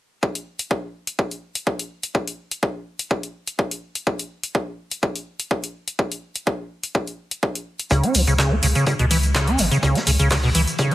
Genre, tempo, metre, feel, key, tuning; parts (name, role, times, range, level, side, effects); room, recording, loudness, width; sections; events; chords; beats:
acid house; 125 BPM; 4/4; straight; A4 = 439 Hz
electronic kick drum; drums; 0.2-10.9 s; -23 LUFS; equal; high-pass filter on kick, studio ambience, high-pass filter on room
punchy analog drum machine; drums; 0.4-10.9 s; handclaps, hi-hat; -25 LUFS; left 1 dB; overdrive, studio ambience
acid bass, square; riff; 7.9-10.9 s; Cb3 to Db4; -19 LUFS; equal; tube saturation, analog chorus, sidechain pumping, ping-pong delay
saturated sub bass; bass; 7.9-10.7 s; Ab1 to Db2; -21 LUFS; equal; sidechain pumping
warm soul drum kit; drums; 7.9-10.9 s; hi-hat, snare drum; -30 LUFS; equal
tube shaker; percussion; 7.9-10.9 s; -30 LUFS; right 2 dB
light reverb, small room ambience; heavily compressed radio sound; -20 LUFS; side -15 dB against mid
0.2-10.9 A section
| 0.23 0.71 1.19 1.67 | 2.15 2.63 3.11 3.59 | 4.07 4.55 5.03 5.51 | 5.99 6.47 6.95 7.43 | 7.91 8.39 8.87 9.35 | 9.83 10.31 10.79